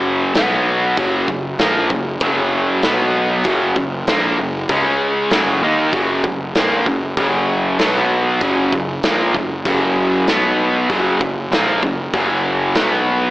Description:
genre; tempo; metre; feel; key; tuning
classic rock; 97 BPM; 4/4; straight; F# major; A4 = 440 Hz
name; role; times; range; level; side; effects
distorted electric guitar; riff; 0.0-13.3 s; F#2 to D#4; -16 LUFS; equal; distortion
fuzz picked electric bass; bass; 0.0-13.3 s; F#1 to D#2; -23 LUFS; equal; overdrive
big rock drum kit; drums; 0.3-12.9 s; hi-hat, kick drum, snare drum; -21 LUFS; equal; none
room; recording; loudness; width
light reverb; AM radio sound; -14 LUFS; side -18 dB against mid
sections
0.0-13.3 A section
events
none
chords
0.4 B5; 1.0 F#; 2.8 B5; 3.5 F#; 4.7 C#5; 5.3 F#; 7.8 B5; 8.4 F#; 10.3 B5; 10.9 F#; 12.8 B5

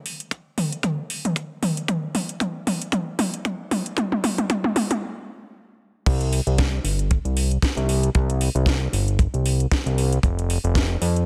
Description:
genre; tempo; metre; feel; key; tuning
nu-disco, nu disco; 115 BPM; 4/4; swing 56% on 16ths; unclear; A4 = 440 Hz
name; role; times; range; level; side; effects
house drum kit; drums; 0.1-11.3 s; crash cymbal, hi-hat, snare drum, toms; -27 LUFS; equal; overdrive
kick drum; drums; 0.3-10.9 s; none; -23 LUFS; equal; high-pass filter on kick, high-pass filter on snare, high-pass filter on room
fat analog bass; bass; 6.1-11.3 s; F1 to F2; -23 LUFS; equal; none
room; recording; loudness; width
light reverb; none; -23 LUFS; mono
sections
0.0-6.1 A section; 6.1-11.3 B section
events
build-up 0.0-6.1; drum fill 0.0-5.0; stop 5.0-6.1; drop 6.1-11.3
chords
none

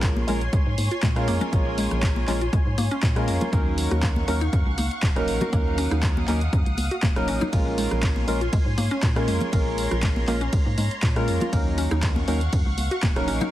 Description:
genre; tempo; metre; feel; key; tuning
deep house; 120 BPM; 4/4; swing 54% on 16ths; Bb minor; A4 = 439 Hz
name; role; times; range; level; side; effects
soft string machine; sustained chords; 0.0-13.5 s; Db5 to Eb6; -33 LUFS; equal; ensemble chorus, sidechain pumping
percussive organ stab; stabs; 0.0-13.5 s; Gb3 to Bb4; -28 LUFS; equal; lush chorus, sidechain pumping, dub echo
organ-like FM bass; bass; 0.0-13.4 s; Eb1 to Bb2; -26 LUFS; equal; tube saturation, sidechain pumping
electronic kick drum; drums; 0.0-13.1 s; none; -24 LUFS; equal; none
punchy analog drum machine; drums; 0.0-13.5 s; handclaps, hi-hat, ride cymbal, rim click; -32 LUFS; equal; none
congas; percussion; 0.2-13.5 s; none; -32 LUFS; left 1 dB; none
mallet-like synth pluck; arpeggios; 0.3-13.5 s; Ab3 to Gb4; -31 LUFS; left 1 dB; chorus, vintage 12-bit sampler grit, sidechain pumping, digital delay
room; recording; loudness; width
light reverb, digital ambience; heavily compressed radio sound, vinyl crackle; -20 LUFS; side -14 dB against mid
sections
0.0-13.5 A section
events
none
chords
0.0 Bbm7; 3.5 Ebm7; 7.5 Bbm7; 11.5 Ebm7

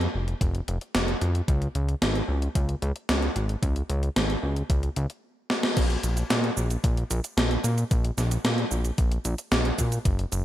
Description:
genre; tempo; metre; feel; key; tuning
synthwave; 112 BPM; 4/4; straight; unclear; A4 = 442 Hz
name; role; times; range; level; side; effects
fat analog bass; bass; 0.0-10.4 s; F1 to Bb2; -26 LUFS; equal; tube saturation
gated 80s digital drum machine; drums; 0.0-10.4 s; cabasa, crash cymbal, hi-hat, snare drum; -27 LUFS; equal; gated reverb, gated reverb snare, overdrive
electronic kick drum; drums; 0.4-10.2 s; none; -26 LUFS; equal; overdrive
room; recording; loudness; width
light reverb; bright 1980s-style digital production; -23 LUFS; side -13 dB against mid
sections
0.0-5.8 A section; 5.8-10.4 B section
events
drum fill 5.5; band accent 5.6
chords
none

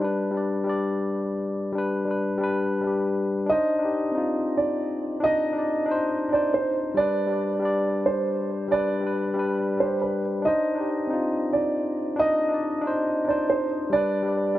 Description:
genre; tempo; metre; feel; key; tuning
hip hop; 138 BPM; 4/4; half-time; C harmonic minor; A4 = 440 Hz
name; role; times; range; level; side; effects
tine electric piano; accompaniment; 0.0-14.6 s; G3 to Eb5; -25 LUFS; left 2 dB; low-pass filter
dark concert grand piano; melody; 3.5-14.6 s; B4 to Eb5; -25 LUFS; right 2 dB; low-pass filter, tape echo
room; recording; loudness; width
light reverb; none; -22 LUFS; side -14 dB against mid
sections
0.0-14.6 A section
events
break 0.0-3.5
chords
0.0 G; 3.5 Cmadd9; 7.0 G; 10.4 Cmadd9; 13.9 G

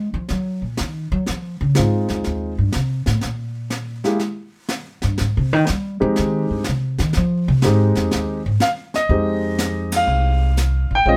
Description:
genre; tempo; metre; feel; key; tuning
jazz piano trio; 123 BPM; 4/4; swing 68% on 8ths; F minor; A4 = 440 Hz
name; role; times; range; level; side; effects
upright bass; bass; 0.0-11.2 s; A1 to Ab3; -22 LUFS; equal; none
jazz brush drum kit; drums; 0.3-11.2 s; brushed snare drum, hi-hat, kick drum, ride cymbal, snare drum; -29 LUFS; equal; none
warm concert grand piano; melody; 1.8-11.2 s; Ab3 to G5; -22 LUFS; equal; none
room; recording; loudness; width
little or no reverb; none; -20 LUFS; mono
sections
0.0-9.1 A section; 9.1-11.2 B section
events
upright bass solo 0.0-9.1; band accent 9.8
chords
0.0 Ab7sus2 (rootless); 1.3 Dbmaj9; 3.2 N.C.; 5.2 Fm9

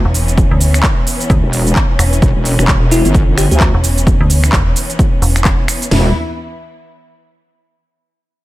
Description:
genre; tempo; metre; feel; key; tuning
bass house; 130 BPM; 4/4; swing 60% on 16ths; E dorian; A4 = 439 Hz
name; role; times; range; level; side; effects
bell-like FM electric piano; melody; 0.0-0.1, 2.9-3.6 s; E4 to G4; -20 LUFS; left 2 dB; chorus, dub echo
warm studio string section; sustained chords; 0.0-6.1 s; E3 to E4; -22 LUFS; left 1 dB; sidechain pumping, low-pass filter
wobble bass; bass; 0.0-6.1 s; E1 to D2; -13 LUFS; equal; chorus, tube saturation, sidechain pumping
metallic FM bass; bass; 0.1-5.6 s; E1 to D2; -13 LUFS; equal; tube saturation, sidechain pumping
big-room dance drum kit; drums; 0.1-5.9 s; finger snaps, handclaps, hi-hat, shaker; -18 LUFS; right 1 dB; none
house drum kit; drums; 0.4-6.0 s; hi-hat, kick drum, snare drum, toms; -14 LUFS; equal; overdrive
room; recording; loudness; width
little or no reverb; none; -10 LUFS; side -17 dB against mid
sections
0.0-5.9 A section; 5.9-7.8 B section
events
drop 0.0-5.9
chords
0.0 E5

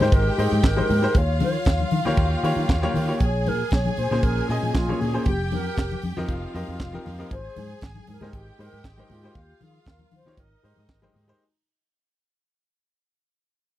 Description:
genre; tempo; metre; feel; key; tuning
disco; 117 BPM; 4/4; straight; unclear; A4 = 443 Hz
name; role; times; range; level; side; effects
wooden-headed alto flute; melody; 0.0-11.2 s; F4 to Db5; -28 LUFS; equal; none
warm studio violin section; second line; 0.0-11.4 s; Eb4 to Ab5; -32 LUFS; equal; none
clear baby grand piano; accompaniment; 0.0-11.4 s; Bb2 to F5; -27 LUFS; left 2 dB; none
fingered electric bass; bass; 0.0-11.3 s; F1 to Eb3; -26 LUFS; equal; none
tight funk drum kit; drums; 0.0-11.3 s; handclaps, hi-hat, kick drum, snare drum; -22 LUFS; right 1 dB; none
congas; percussion; 0.0-11.3 s; none; -31 LUFS; left 6 dB; none
room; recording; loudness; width
little or no reverb; dry, close 1970s-style studio recording; -20 LUFS; side -14 dB against mid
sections
0.0-11.4 A section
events
fade-out 0.0-11.4; grand piano fill 2.2-3.2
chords
0.0 Abmaj9; 1.1 Eb9; 3.2 Bbm7; 5.3 F9sus4; 7.3 Abmaj9; 9.4 Ebadd9; 10.4 Abmaj9

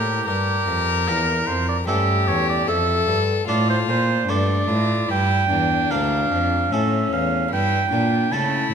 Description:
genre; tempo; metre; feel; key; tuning
classical, baroque-style sonata movement with continuo; 75 BPM; 3/4; straight; D minor; A4 = 438 Hz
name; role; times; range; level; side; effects
rich violin; melody; 0.0-8.7 s; C#4 to Bb4; -24 LUFS; left 8 dB; none
warm oboe; second line; 0.0-8.7 s; G4 to A5; -22 LUFS; right 6 dB; none
harpsichord; accompaniment; 0.0-8.7 s; D2 to D5; -28 LUFS; left 2 dB; none
rich cello; bass; 0.0-8.7 s; D2 to C#3; -23 LUFS; right 1 dB; none
room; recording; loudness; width
moderate recital hall reverb, RT60 1.7 s; none; -18 LUFS; side -7 dB against mid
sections
0.0-8.7 A section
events
none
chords
0.3 Edim; 1.9 A7/G; 2.7 Dm/F; 5.1 Gm; 6.7 A; 7.5 A7/G

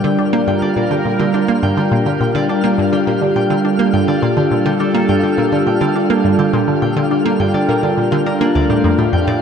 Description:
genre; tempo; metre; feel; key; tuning
ambient, sequencer-driven space music; 104 BPM; 4/4; straight; G minor; A4 = 440 Hz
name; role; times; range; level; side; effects
sweeping resonant pad; sustained chords; 0.0-9.4 s; G3 to D5; -15 LUFS; equal; chorus, shimmer reverb
concert harp; arpeggios; 0.0-9.4 s; D4 to G5; -23 LUFS; equal; auto-pan, tape echo, shimmer reverb
resonant blip pluck; riff; 0.0-9.4 s; D2 to D4; -18 LUFS; equal; phaser, tape echo
twinkling granular texture; texture; 0.0-9.4 s; F5; -28 LUFS; left 1 dB; built-in reverb, shimmer reverb
room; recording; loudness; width
wet huge ambient reverb, RT60 8.0 s; dark, warm production; -13 LUFS; side -7 dB against mid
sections
0.0-9.4 A section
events
none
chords
0.0 Gm7; 8.6 Dm

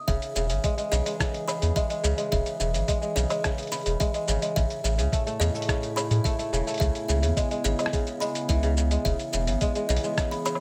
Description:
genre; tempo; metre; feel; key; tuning
folktronica; 107 BPM; 4/4; straight; E major; A4 = 440 Hz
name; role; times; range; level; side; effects
buzzing kalimba; second line; 0.1-10.6 s; D#5 to B5; -35 LUFS; equal; delay, plate reverb
warbly tape-like pad; sustained chords; 0.1-10.6 s; A2 to G#4; -38 LUFS; equal; chorus, built-in reverb
kora; arpeggios; 0.1-10.6 s; C#3 to A3; -32 LUFS; equal; delay, plate reverb
warm sub bass; bass; 0.1-10.0 s; E1 to A2; -28 LUFS; equal; tube saturation
electronic kick drum; drums; 0.1-10.3 s; none; -30 LUFS; equal; none
lo-fi sampler-style drum kit; drums; 0.1-10.6 s; cabasa, hi-hat, rim click, woodblock; -35 LUFS; equal; low-pass filter on perc, low-pass filter on hats, low-pass filter on snare
room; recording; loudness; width
light reverb; none; -26 LUFS; mono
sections
0.1-10.6 A section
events
none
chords
0.1 E6; 4.6 A; 6.8 C#m7; 9.1 E6

